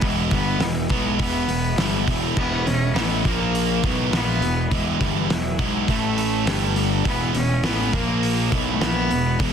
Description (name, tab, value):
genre	quiet-loud alternative rock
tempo	102 BPM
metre	4/4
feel	straight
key	unclear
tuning	A4 = 440 Hz
part	bright cello	melody	0.0-9.5 s	E3 to C#4	-26 LUFS	equal	none
part	electric guitar through a small old amp	arpeggios	0.0-9.5 s	E2 to D5	-30 LUFS	right 1 dB	phaser, analog delay
part	distorted electric guitar	riff	0.0-9.5 s	E2 to B3	-26 LUFS	right 14 dB	overdrive
part	overdriven semi-hollow guitar	riff	0.0-9.5 s	E2 to B3	-27 LUFS	left 13 dB	none
part	fuzz picked electric bass	bass	0.0-9.5 s	E1 to B1	-26 LUFS	equal	overdrive
part	loose indie drum kit	drums	0.0-9.5 s	crash cymbal, hi-hat, kick drum, snare drum	-26 LUFS	equal	soft clipping on kick
room	light reverb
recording	dense, heavily limited modern master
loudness	-19 LUFS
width	side -7 dB against mid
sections	0.0-9.5 A section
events	none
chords	0.0 E; 3.2 A#5; 3.8 E; 5.9 A5; 6.5 G5; 7.1 E; 7.9 A#5; 8.5 E